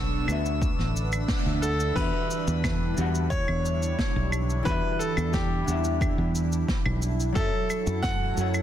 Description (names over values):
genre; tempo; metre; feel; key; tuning
sunset chillout; 89 BPM; 4/4; straight; E dorian; A4 = 439 Hz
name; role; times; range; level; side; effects
vintage hollow-body jazz guitar; accompaniment; 0.0-8.6 s; D3 to F#5; -33 LUFS; moving between left 7 dB and right 9 dB; auto-pan, tape echo
lush unison pad; sustained chords; 0.0-8.6 s; G3 to C#6; -33 LUFS; right 1 dB; chorus, phaser
fingered electric bass; bass; 0.0-8.6 s; A1 to F#2; -27 LUFS; equal; none
drifting glass-harmonics texture; texture; 0.0-2.0 s; E6; -40 LUFS; equal; chorus, built-in reverb
jazz brush drum kit; drums; 0.3-8.6 s; cabasa, claves, crash cymbal, snare drum; -33 LUFS; right 1 dB; soft clipping on snare
electronic kick drum; drums; 0.6-8.2 s; none; -30 LUFS; equal; overdrive
bright concert grand piano; melody; 1.6-8.6 s; G4 to F#5; -31 LUFS; right 1 dB; tape echo
room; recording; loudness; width
light reverb, studio ambience; dense, heavily limited modern master; -24 LUFS; side -11 dB against mid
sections
0.0-2.0 A section; 2.0-8.6 B section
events
band accent 1.3-1.6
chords
0.0 Bm9; 0.6 D69; 2.0 Em9; 7.4 F#m7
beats
0.62 1.29 | 1.97 2.64 3.31 3.99 | 4.66 5.34 6.01 6.68 | 7.36 8.03